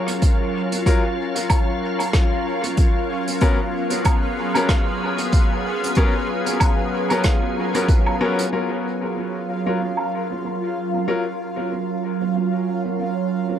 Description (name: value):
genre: ambient dub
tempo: 94 BPM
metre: 4/4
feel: swing 57% on 16ths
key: unclear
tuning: A4 = 438 Hz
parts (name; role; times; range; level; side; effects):
- soft additive organ-like pad; sustained chords; 0.0-13.6 s; F#3 to A#4; -24 LUFS; right 1 dB; ensemble chorus, built-in reverb
- bubbling stepped-filter texture; texture; 0.1-13.6 s; E#4 to E#5; -29 LUFS; equal; chorus, built-in reverb
- vintage brush drum kit; drums; 0.1-13.6 s; hi-hat, rim click, woodblock; -28 LUFS; right 2 dB; low-pass filter on hats, low-pass filter on snare, low-pass filter on perc, low-pass filter on room, dub echo
- electronic kick drum; drums; 0.2-8.0 s; none; -18 LUFS; equal; none
- bright upright piano; stabs; 0.9-11.2 s; F#3 to A#4; -26 LUFS; left 3 dB; dub echo
room: moderate spring reverb, RT60 1.3 s, small room ambience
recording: none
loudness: -18 LUFS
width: side -10 dB against mid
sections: 0.0-8.5 A section; 8.5-13.6 B section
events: filter sweep on ambient pad 8.5-13.6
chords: 0.0 F#maj7; 3.4 G#m11; 8.5 F#maj7